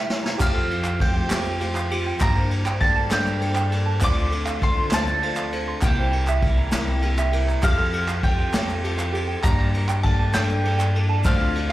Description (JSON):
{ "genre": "indie folk with a building arrangement", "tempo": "66 BPM (dotted quarters)", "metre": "6/8", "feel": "straight", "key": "F major", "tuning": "A4 = 440 Hz", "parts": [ { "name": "picked twelve-string acoustic guitar", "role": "accompaniment", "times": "0.0-11.7 s", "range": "G2 to A4", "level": "-30 LUFS", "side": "left 4 dB", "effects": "slapback echo" }, { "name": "warm symphonic string section", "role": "sustained chords", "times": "0.0-11.7 s", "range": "C3 to C5", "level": "-34 LUFS", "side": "left 1 dB", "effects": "none" }, { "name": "ukulele", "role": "arpeggios", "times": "0.0-11.7 s", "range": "G4 to C6", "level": "-31 LUFS", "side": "right 8 dB", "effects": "slapback echo" }, { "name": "vintage brush drum kit", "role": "drums", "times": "0.1-11.7 s", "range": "crash cymbal, kick drum, ride cymbal, snare drum", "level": "-24 LUFS", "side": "equal", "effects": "none" }, { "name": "mandolin", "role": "melody", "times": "0.4-11.7 s", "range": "F5 to D6", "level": "-27 LUFS", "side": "equal", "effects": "slapback echo" }, { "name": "upright bass", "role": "bass", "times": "0.4-11.7 s", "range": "C2 to G2", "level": "-24 LUFS", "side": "equal", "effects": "none" }, { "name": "egg shaker", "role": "percussion", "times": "0.4-11.4 s", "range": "none", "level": "-40 LUFS", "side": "left 3 dB", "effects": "none" }, { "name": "group handclap", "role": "percussion", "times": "0.4-11.5 s", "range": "none", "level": "-33 LUFS", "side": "right 2 dB", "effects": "slapback echo" } ], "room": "little or no reverb", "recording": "live gig heard through the venue's PA, club reverb", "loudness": "-19 LUFS", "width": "side -15 dB against mid", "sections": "0.4-11.7 A section", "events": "break 0.0-0.4; drum fill 0.0-0.4", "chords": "0.4 Fadd9; 2.2 Gmadd9; 4.0 Dm7; 5.8 C7; 7.6 Fadd9; 9.4 Gmadd9" }